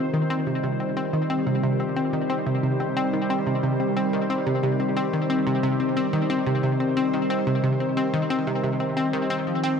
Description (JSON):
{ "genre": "ambient, sequencer-driven space music", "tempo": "90 BPM", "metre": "4/4", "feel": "straight", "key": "C minor", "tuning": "A4 = 443 Hz", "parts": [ { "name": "evolving wavetable pad", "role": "sustained chords", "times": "0.0-9.8 s", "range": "Eb3 to C5", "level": "-25 LUFS", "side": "equal", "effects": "chorus, built-in reverb" }, { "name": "concert harp", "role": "arpeggios", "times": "0.0-2.5 s", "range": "Bb3 to G4", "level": "-42 LUFS", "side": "left 1 dB", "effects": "none" }, { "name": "analog pluck", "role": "riff", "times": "0.0-9.7 s", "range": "C3 to C4", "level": "-24 LUFS", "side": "left 1 dB", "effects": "chorus, tape echo" } ], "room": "wet plate reverb, RT60 2.7 s", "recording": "cassette tape", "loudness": "-22 LUFS", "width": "side -6 dB against mid", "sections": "0.0-9.8 A section", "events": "none", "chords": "0.0 Cm" }